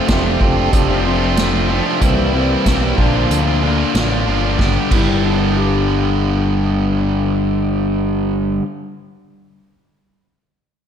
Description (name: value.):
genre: classic rock.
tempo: 93 BPM.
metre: 4/4.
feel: straight.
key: unclear.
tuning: A4 = 440 Hz.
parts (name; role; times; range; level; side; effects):
tonewheel organ; sustained chords; 0.0-3.4 s; E3 to G4; -20 LUFS; right 1 dB; slow rotary speaker, overdrive, chorus vibrato.
crunchy overdriven guitar; riff; 0.0-8.7 s; F2 to E4; -20 LUFS; left 8 dB; slapback echo.
distorted electric guitar; riff; 0.0-8.7 s; F2 to G4; -20 LUFS; right 8 dB; overdrive, slapback echo.
growling picked electric bass; bass; 0.1-8.6 s; F1 to D2; -20 LUFS; equal; overdrive.
vintage drum kit; drums; 0.1-5.1 s; crash cymbal, hi-hat, kick drum, snare drum; -19 LUFS; equal; none.
electric slide guitar; second line; 4.9-7.9 s; D4 to G4; -26 LUFS; left 1 dB; none.
room: moderate recital hall reverb, RT60 1.7 s, small room reverb.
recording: big arena sound.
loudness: -14 LUFS.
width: side -8 dB against mid.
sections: 0.0-4.6 A section; 4.6-7.2 B section.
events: tonewheel organ solo 0.0-4.6.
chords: 0.0 F; 2.0 C; 3.0 Bb; 4.6 G.